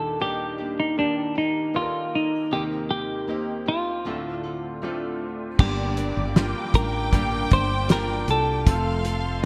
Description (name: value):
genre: pop ballad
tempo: 78 BPM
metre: 4/4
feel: straight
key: G minor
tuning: A4 = 440 Hz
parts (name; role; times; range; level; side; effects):
- semi-hollow electric guitar; melody; 0.0-9.0 s; D4 to C5; -29 LUFS; equal; subtle chorus, digital delay
- clear grand piano; accompaniment; 0.0-9.5 s; D2 to D5; -34 LUFS; equal; analog chorus
- nylon-string guitar; arpeggios; 0.0-9.5 s; G2 to Bb4; -36 LUFS; equal; none
- rich studio violin section; second line; 5.6-9.4 s; D5 to G5; -35 LUFS; equal; none
- muted studio string section; sustained chords; 5.6-9.5 s; Bb3 to D6; -37 LUFS; equal; none
- woody fretless electric bass; bass; 5.6-9.5 s; F1 to C2; -29 LUFS; equal; none
- damped 70s drum kit; drums; 5.6-9.2 s; crash cymbal, hi-hat, kick drum, snare drum; -23 LUFS; equal; none
room: moderate plate reverb, RT60 2.1 s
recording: bright 1980s-style digital production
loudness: -24 LUFS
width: mono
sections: 0.0-5.6 A section; 5.6-9.5 B section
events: none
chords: 0.0 Ebmaj7; 2.5 Cm7/Eb; 4.1 Dm7; 5.6 Gm; 8.7 F